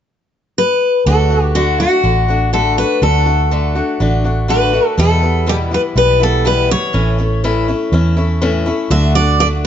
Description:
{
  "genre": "honky-tonk and classic country",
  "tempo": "122 BPM",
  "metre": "4/4",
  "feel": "straight",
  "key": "D major",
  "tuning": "A4 = 441 Hz",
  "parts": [
    { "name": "picked steel-string acoustic guitar", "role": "melody", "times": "0.6-9.5 s", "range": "F#4 to E5", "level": "-15 LUFS", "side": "left 1 dB", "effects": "none" },
    { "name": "picked swing-style acoustic guitar", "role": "accompaniment", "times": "1.1-9.7 s", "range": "E2 to F#4", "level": "-18 LUFS", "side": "left 3 dB", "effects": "none" },
    { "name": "vintage muted fingered electric bass", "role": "bass", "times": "1.1-9.7 s", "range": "A1 to E2", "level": "-15 LUFS", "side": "right 1 dB", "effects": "none" }
  ],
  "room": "light reverb",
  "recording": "nothing above 7.7 kHz",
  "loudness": "-12 LUFS",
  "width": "side -9 dB against mid",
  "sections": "0.0-1.1 A section; 1.1-8.9 B section",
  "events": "none",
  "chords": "0.0 N.C.; 1.1 D; 5.0 Em; 6.9 A; 8.9 D",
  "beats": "0.09 0.58 | 1.07 1.55 2.04 2.53 | 3.02 3.51 4.00 4.49 | 4.98 5.47 5.96 6.45 | 6.94 7.43 7.92 8.41 | 8.90 9.39"
}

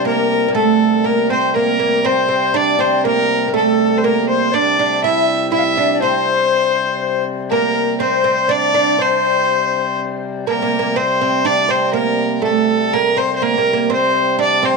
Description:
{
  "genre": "medieval dance",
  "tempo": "121 BPM",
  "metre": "3/4",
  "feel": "straight",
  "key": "C mixolydian",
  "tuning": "A4 = 440 Hz",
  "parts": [
    { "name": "clear fiddle", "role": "melody", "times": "0.0-14.8 s", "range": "A4 to E5", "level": "-17 LUFS", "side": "left 2 dB", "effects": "none" },
    { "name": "bass recorder", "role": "second line", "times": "0.0-10.0 s", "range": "A4 to F5", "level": "-21 LUFS", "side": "left 15 dB", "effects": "tape echo" },
    { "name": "oud", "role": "second line", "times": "0.0-14.8 s", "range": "A3 to E4", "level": "-18 LUFS", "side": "right 13 dB", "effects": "none" },
    { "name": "pedal harmonium", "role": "drone", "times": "0.0-14.8 s", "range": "C3 to G3", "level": "-24 LUFS", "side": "left 4 dB", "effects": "none" }
  ],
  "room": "light reverb, small room ambience",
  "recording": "1960s-style stereo with parts hard left and right",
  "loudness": "-13 LUFS",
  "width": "side -3 dB against mid",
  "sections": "0.0-10.5 A section; 10.5-14.8 A section",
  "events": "none",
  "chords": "none",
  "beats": "| 0.06 0.56 1.06 | 1.55 2.05 2.55 | 3.04 3.54 4.04 | 4.53 5.03 5.52 | 6.02 6.51 7.01 | 7.50 8.00 8.49 | 8.98 9.48 9.97 | 10.46 10.96 11.45 | 11.94 12.44 12.93 | 13.42 13.91 14.40"
}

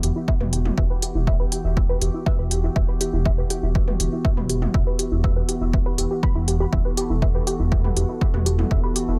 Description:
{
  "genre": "melodic techno",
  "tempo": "121 BPM",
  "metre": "4/4",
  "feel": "straight",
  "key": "E minor",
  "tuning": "A4 = 438 Hz",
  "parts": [
    { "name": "warm analog pad", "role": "sustained chords", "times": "0.0-9.2 s", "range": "E3 to A4", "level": "-32 LUFS", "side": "equal", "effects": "chorus, sidechain pumping" },
    { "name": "tight sequenced synth", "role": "arpeggios", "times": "0.0-9.1 s", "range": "E4 to B5", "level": "-32 LUFS", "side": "equal", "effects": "chorus, sidechain pumping, dub echo" },
    { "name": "dark detuned saw bass", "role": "bass", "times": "0.0-9.2 s", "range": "E1", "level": "-26 LUFS", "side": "equal", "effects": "tube saturation, sidechain pumping" },
    { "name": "techno drum kit", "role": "drums", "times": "0.0-9.1 s", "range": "hi-hat, toms", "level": "-30 LUFS", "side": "equal", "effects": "none" },
    { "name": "electronic kick drum", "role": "drums", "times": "0.3-8.8 s", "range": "none", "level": "-25 LUFS", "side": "equal", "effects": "none" }
  ],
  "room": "digital ambience",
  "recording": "echo-heavy mix",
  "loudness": "-22 LUFS",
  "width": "mono",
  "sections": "0.0-9.2 A section",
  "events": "none",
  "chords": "0.0 Em",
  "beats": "0.28 | 0.78 1.27 1.77 2.26 | 2.76 3.25 3.75 4.25 | 4.74 5.24 5.73 6.23 | 6.73 7.22 7.72 8.21 | 8.71"
}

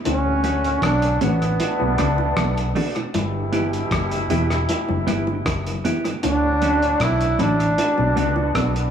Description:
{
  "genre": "roots reggae",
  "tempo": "78 BPM",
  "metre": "4/4",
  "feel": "straight",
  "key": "D major",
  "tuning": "A4 = 439 Hz",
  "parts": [
    { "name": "bright trombone", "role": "melody", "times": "0.1-8.9 s", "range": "B3 to E4", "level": "-21 LUFS", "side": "right 1 dB", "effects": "tape echo" },
    { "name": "clear trombone section", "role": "second line", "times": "0.1-8.9 s", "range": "B2 to C#5", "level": "-27 LUFS", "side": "equal", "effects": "tape echo" },
    { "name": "electric guitar at the edge of break-up", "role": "riff", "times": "0.1-8.8 s", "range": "E2 to D3", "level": "-30 LUFS", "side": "left 4 dB", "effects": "none" },
    { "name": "vintage muted fingered electric bass", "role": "bass", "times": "0.1-8.9 s", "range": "E1 to D2", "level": "-24 LUFS", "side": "equal", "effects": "none" },
    { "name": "cloth-damped thuddy drum kit", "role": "drums", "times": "0.1-8.9 s", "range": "hi-hat, kick drum, rim click", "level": "-28 LUFS", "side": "equal", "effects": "dub echo" },
    { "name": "bongos", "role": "percussion", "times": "0.1-8.5 s", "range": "none", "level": "-29 LUFS", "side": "right 1 dB", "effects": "none" },
    { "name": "mellow tonewheel organ", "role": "accompaniment", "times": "0.3-8.8 s", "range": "D2 to C#4", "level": "-33 LUFS", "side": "left 3 dB", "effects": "none" },
    { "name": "clean electric guitar", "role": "accompaniment", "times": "0.4-8.3 s", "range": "A3 to G4", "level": "-29 LUFS", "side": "right 3 dB", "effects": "tape echo" }
  ],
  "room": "light reverb",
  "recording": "echo-heavy mix, small room ambience",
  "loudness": "-18 LUFS",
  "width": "side -8 dB against mid",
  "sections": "0.0-8.9 A section",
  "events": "none",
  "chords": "0.1 Dmaj7; 1.6 Bm7; 3.1 G6; 6.2 Dmaj7; 7.8 Bm7",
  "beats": "| 0.06 0.83 1.60 2.37 | 3.15 3.92 4.69 5.46 | 6.24 7.01 7.78 8.55"
}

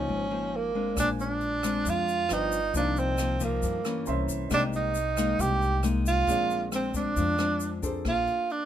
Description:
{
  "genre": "bossa nova",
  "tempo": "136 BPM",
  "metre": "4/4",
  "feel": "straight",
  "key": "unclear",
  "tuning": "A4 = 440 Hz",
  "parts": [
    { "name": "breathy tenor saxophone", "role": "melody", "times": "0.0-8.7 s", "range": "Bb3 to G4", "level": "-27 LUFS", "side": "right 4 dB", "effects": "none" },
    { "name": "nylon-string guitar", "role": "accompaniment", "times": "0.0-8.7 s", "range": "G2 to C5", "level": "-31 LUFS", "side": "left 5 dB", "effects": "none" },
    { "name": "warm grand piano", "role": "accompaniment", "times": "0.0-8.1 s", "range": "C4 to C6", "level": "-39 LUFS", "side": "right 2 dB", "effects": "none" },
    { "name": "upright bass", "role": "bass", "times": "0.0-8.3 s", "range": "G1 to G2", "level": "-32 LUFS", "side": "left 1 dB", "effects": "none" },
    { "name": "jazz brush drum kit", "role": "drums", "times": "1.0-8.6 s", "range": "hi-hat, kick drum, rim click", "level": "-37 LUFS", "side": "equal", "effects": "none" },
    { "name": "egg shaker", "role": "percussion", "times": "1.0-8.1 s", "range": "none", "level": "-41 LUFS", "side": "left 7 dB", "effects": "none" }
  ],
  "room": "light reverb",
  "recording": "minimal, uncompressed stereo recording",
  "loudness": "-25 LUFS",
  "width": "side -10 dB against mid",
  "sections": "0.0-8.1 A section",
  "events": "grand piano fill 3.9-4.5",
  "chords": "0.0 Db69; 1.0 Bb9; 2.3 G7; 2.7 Cm11; 4.1 C7b9; 4.5 Abmaj9/C; 6.3 Bb9; 8.1 Bbmaj9",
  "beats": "0.09 0.53 | 0.97 1.42 1.86 2.30 | 2.74 3.19 3.63 4.07 | 4.51 4.96 5.40 5.84 | 6.28 6.73 7.17 7.61 | 8.05 8.50"
}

